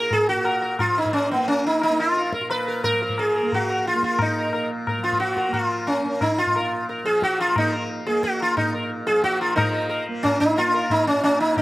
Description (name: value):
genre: indian classical, Hindustani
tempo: 178 BPM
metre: 4/4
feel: straight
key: Bb raga bhairavi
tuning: A4 = 440 Hz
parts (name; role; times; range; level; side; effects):
- sitar; melody; 0.0-11.6 s; Cb4 to Cb5; -20 LUFS; equal; slapback echo
- tanpura; drone; 0.0-11.6 s; Bb2 to Bb3; -30 LUFS; right 1 dB; none
- tabla; percussion; 0.1-11.6 s; none; -28 LUFS; left 2 dB; slapback echo
room: little or no reverb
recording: recorded outdoors, with no room sound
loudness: -19 LUFS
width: side -18 dB against mid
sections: 0.0-9.6 A section; 9.6-11.6 B section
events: speeding up 0.0-11.6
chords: none